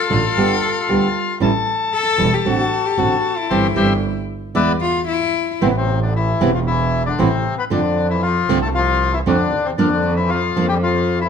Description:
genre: tango.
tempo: 115 BPM.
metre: 4/4.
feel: rubato.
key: A minor from 5.6 s.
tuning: A4 = 443 Hz.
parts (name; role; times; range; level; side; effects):
bandoneon; melody; 0.0-11.3 s; C3 to A5; -20 LUFS; left 5 dB; none.
warm cello; second line; 0.0-5.6 s; E4 to A4; -21 LUFS; left 5 dB; none.
nylon-string guitar; accompaniment; 0.1-10.7 s; C3 to G4; -20 LUFS; right 3 dB; none.
clear double bass; bass; 0.1-11.3 s; E1 to F2; -21 LUFS; right 2 dB; none.
room: moderate large studio reverb, RT60 1.2 s.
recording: none.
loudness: -15 LUFS.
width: side -7 dB against mid.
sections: 0.0-5.6 A section; 5.6-11.3 B section.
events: band accent 3.5-5.6.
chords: 0.4 Gadd9; 1.4 A7; 2.5 D7/A; 3.5 C/G; 4.6 E7; 5.6 Amadd9; 7.7 F6; 9.8 Bb/F (rootless).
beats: 0.38 0.90 | 1.42 1.94 2.46 2.98 | 3.51 4.03 4.56 5.08 | 5.61 6.14 6.66 7.18 | 7.71 8.22 8.74 9.27 | 9.79 10.31 10.83.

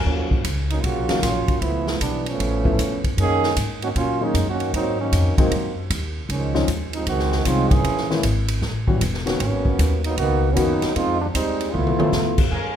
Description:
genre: jazz, big band swing.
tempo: 154 BPM.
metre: 4/4.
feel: swing 65% on 8ths.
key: unclear.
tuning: A4 = 444 Hz.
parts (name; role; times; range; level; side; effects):
bright trumpet section; stabs; 0.0, 12.5-12.8 s; G#4 to G#5; -31 LUFS; right 2 dB; none.
upright bass; bass; 0.0-12.8 s; E1 to Bb2; -24 LUFS; equal; none.
bright trombone section; second line; 0.1-12.4 s; Db3 to Ab4; -23 LUFS; right 2 dB; none.
swinging big-band drum kit; drums; 0.1-12.6 s; crash cymbal, hi-hat, kick drum, ride cymbal, snare drum, toms; -24 LUFS; equal; none.
warm baby grand piano; accompaniment; 1.1-12.1 s; Eb3 to F#4; -26 LUFS; left 3 dB; none.
clear saxophone section; melody; 12.5-12.8 s; G#3 to A#4; -34 LUFS; left 2 dB; none.
room: light reverb.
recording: minimal, uncompressed stereo recording.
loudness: -19 LUFS.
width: side -9 dB against mid.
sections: 0.1-12.5 A section.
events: trombone section solo 0.1-12.5; drum fill 11.7-12.1.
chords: 0.1 Ebm9; 1.6 Db7alt; 3.2 Gb69; 4.7 Ab9; 6.3 Dbmaj9; 7.8 Bbm7b5; 8.6 A13; 9.4 Abm11; 11.0 Fm9; 11.7 Db7alt.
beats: | 0.06 0.45 0.84 1.23 | 1.62 2.01 2.40 2.79 | 3.17 3.56 3.95 4.34 | 4.73 5.12 5.51 5.90 | 6.29 6.68 7.07 7.46 | 7.84 8.23 8.62 9.01 | 9.40 9.79 10.18 10.57 | 10.96 11.35 11.73 12.12 | 12.52.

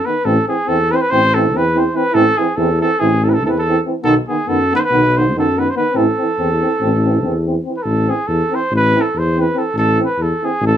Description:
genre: balkan folk, Balkan brass band.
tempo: 284 BPM (eighths).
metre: 9/8.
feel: straight.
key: A hungarian minor.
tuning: A4 = 438 Hz.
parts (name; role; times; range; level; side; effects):
mellow trumpet; melody; 0.0-10.8 s; G#4 to C5; -17 LUFS; right 1 dB; none.
clear euphonium; accompaniment; 0.0-10.5 s; B3 to C4; -23 LUFS; left 4 dB; none.
clear euphonium; accompaniment; 0.1-10.5 s; D#3 to E3; -20 LUFS; right 4 dB; none.
mellow tuba; bass; 0.2-10.8 s; A1 to F#2; -17 LUFS; left 1 dB; none.
room: wet studio ambience, RT60 0.5 s.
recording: band playing live in one room.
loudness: -13 LUFS.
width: side -10 dB against mid.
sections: 0.0-7.8 A section; 7.8-10.8 B section.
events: none.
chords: 0.2 Am; 4.0 B; 5.9 Am.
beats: 0.03 | 0.24 0.45 0.66 0.87 1.08 1.30 1.51 1.72 1.93 | 2.14 2.35 2.56 2.78 2.99 3.20 3.41 3.62 3.83 | 4.04 4.25 4.47 4.68 4.89 5.10 5.31 5.52 5.73 | 5.94 6.16 6.37 6.58 6.79 7.00 7.21 7.42 7.63 | 7.84 8.05 8.27 8.48 8.69 8.90 9.11 9.32 9.53 | 9.74 9.95 10.16 10.37 10.58.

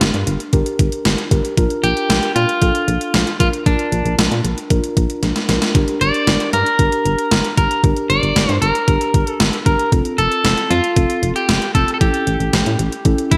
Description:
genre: synth-pop.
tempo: 115 BPM.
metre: 4/4.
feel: straight.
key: G minor.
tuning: A4 = 440 Hz.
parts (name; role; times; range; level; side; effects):
mellow tine electric piano; accompaniment; 0.0-13.4 s; C4 to Bb4; -24 LUFS; equal; none.
solid FM bass; bass; 0.0-13.4 s; F1 to Bb2; -21 LUFS; equal; none.
gated 80s digital drum machine; drums; 0.0-13.4 s; hi-hat, kick drum, snare drum; -20 LUFS; equal; gated reverb, gated reverb snare, overdrive.
electric guitar at the edge of break-up; melody; 1.8-13.4 s; D4 to D5; -21 LUFS; equal; digital delay.
room: moderate lush hall reverb, RT60 2.2 s.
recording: bright 1980s-style digital production.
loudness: -17 LUFS.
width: mono.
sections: 0.0-13.4 A section.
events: drum fill 5.2-5.7.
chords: 0.0 Gm; 1.6 Bb; 5.7 Gm; 9.9 F; 12.0 A7.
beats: 0.01 0.53 1.05 | 1.57 2.10 2.62 3.14 | 3.66 4.18 4.71 5.23 | 5.75 6.27 6.79 7.31 | 7.84 8.36 8.88 9.40 | 9.92 10.45 10.97 11.49 | 12.01 12.53 13.05.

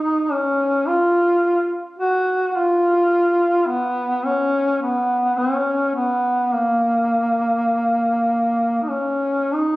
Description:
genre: caucasian folk, Caucasian lament.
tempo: 53 BPM.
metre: 3/4.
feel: rubato.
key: Bb phrygian.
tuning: A4 = 439 Hz.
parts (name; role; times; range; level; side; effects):
mellow duduk; solo; 0.0-9.8 s; Bb3 to Gb4; -17 LUFS; equal; none.
room: light reverb.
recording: recorded on a phone in the room, club reverb, compression.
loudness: -17 LUFS.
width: side -19 dB against mid.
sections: 0.0-9.8 A section.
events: none.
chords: none.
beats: | 0.32 1.46 2.57 | 3.69 4.82 5.97 | 7.13 8.30 9.53.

